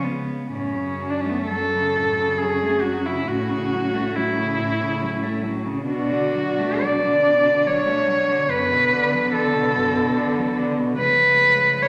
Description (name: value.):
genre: classical, lyrical piece for cello ensemble.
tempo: 59-73 BPM.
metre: 3/4.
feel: rubato.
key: F# minor.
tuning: A4 = 441 Hz.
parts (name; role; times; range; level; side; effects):
warm cello; melody; 0.0-11.9 s; B3 to D5; -22 LUFS; equal; none.
dark cello; second line; 0.0-11.9 s; G#3 to D4; -29 LUFS; equal; none.
clear cello; accompaniment; 0.0-11.9 s; F#2 to B3; -31 LUFS; equal; none.
dark cello; bass; 0.0-11.9 s; F#2 to D3; -32 LUFS; equal; none.
room: wet recital hall reverb, RT60 1.6 s.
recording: none.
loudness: -21 LUFS.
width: mono.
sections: 0.5-11.9 A section.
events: none.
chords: 0.0 C#5; 0.5 F#m; 3.3 F#m/A; 5.9 Bm7; 8.5 Bm/F#; 11.0 C#.